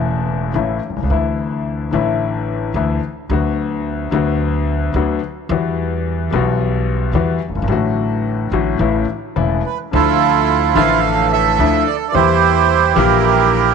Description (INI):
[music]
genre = tango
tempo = 109 BPM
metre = 4/4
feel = rubato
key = D major, D minor from 9.9 s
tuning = A4 = 441 Hz
[part]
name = clear concert grand piano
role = accompaniment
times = 0.0-13.7 s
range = E1 to E5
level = -18 LUFS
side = left 8 dB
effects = none
[part]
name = upright bass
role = bass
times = 0.0-13.7 s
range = E1 to E2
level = -20 LUFS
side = right 2 dB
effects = none
[part]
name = bandoneon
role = melody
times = 9.7-13.7 s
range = E4 to F5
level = -13 LUFS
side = right 14 dB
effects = none
[sound]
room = light reverb, small room ambience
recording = 1960s-style stereo with parts hard left and right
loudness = -14 LUFS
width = side -6 dB against mid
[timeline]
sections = 0.0-9.9 A section; 9.9-13.7 B section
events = none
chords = 0.0 A; 1.1 Dsus2; 3.3 Bm/D; 5.5 Emadd9; 7.7 D/A; 8.8 A; 9.9 Dmadd9; 12.1 Edim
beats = 0.55 | 1.10 1.66 2.21 2.76 | 3.31 3.86 4.41 4.95 | 5.50 6.05 6.60 7.15 | 7.70 8.25 8.81 9.37 | 9.93 10.48 11.04 11.59 | 12.14 12.69 13.24